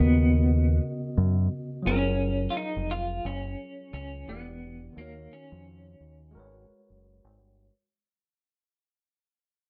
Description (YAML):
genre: R&B, neo-soul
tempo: 87 BPM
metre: 4/4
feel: swing 59% on 16ths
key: G# dorian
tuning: A4 = 440 Hz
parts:
  - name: semi-hollow electric guitar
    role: melody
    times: 0.0-6.7 s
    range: A#3 to E#4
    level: -31 LUFS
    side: equal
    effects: tremolo, slapback echo
  - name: tine electric piano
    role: accompaniment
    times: 0.0-7.7 s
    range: C#3 to D#5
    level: -36 LUFS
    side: equal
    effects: overdrive
  - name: deep dub fingered electric bass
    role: bass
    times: 0.0-7.7 s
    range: E1 to F#2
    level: -28 LUFS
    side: equal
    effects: none
room: moderate studio reverb, RT60 0.8 s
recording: none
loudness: -26 LUFS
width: mono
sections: 0.0-7.7 A section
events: fade-out 0.0-7.7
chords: 0.0 C#13sus4; 1.9 F#maj9; 4.3 Em7; 5.0 D#m7; 6.3 G#m11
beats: 0.13 0.82 1.51 | 2.20 2.89 3.58 4.27 | 4.96 5.65 6.34 7.03